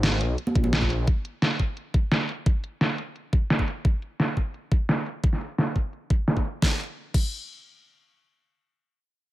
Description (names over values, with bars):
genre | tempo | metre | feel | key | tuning
liquid drum and bass | 173 BPM | 4/4 | straight | G# minor | A4 = 440 Hz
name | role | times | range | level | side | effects
swelling detuned saw bass | bass | 0.0-1.1 s | G#1 to B1 | -25 LUFS | equal | tube saturation
pop drum kit | drums | 0.0-7.3 s | crash cymbal, hi-hat, snare drum | -25 LUFS | equal | overdrive, low-pass filter on hats, low-pass filter on snare, low-pass filter on cymbals, low-pass filter on room
congas | percussion | 0.5-0.7 s | none | -28 LUFS | right 2 dB | none
electronic kick drum | drums | 0.6-7.2 s | none | -23 LUFS | equal | overdrive
room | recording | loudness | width
digital ambience | none | -23 LUFS | side -16 dB against mid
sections
0.0-6.6 A section; 6.6-9.3 B section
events
filter sweep on drum 0.0-6.6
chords
none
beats
0.03 0.38 0.73 | 1.07 1.42 1.77 2.12 | 2.46 2.81 3.15 3.50 | 3.85 4.20 4.54 4.89 | 5.24 5.58 5.93 6.28 | 6.62 6.97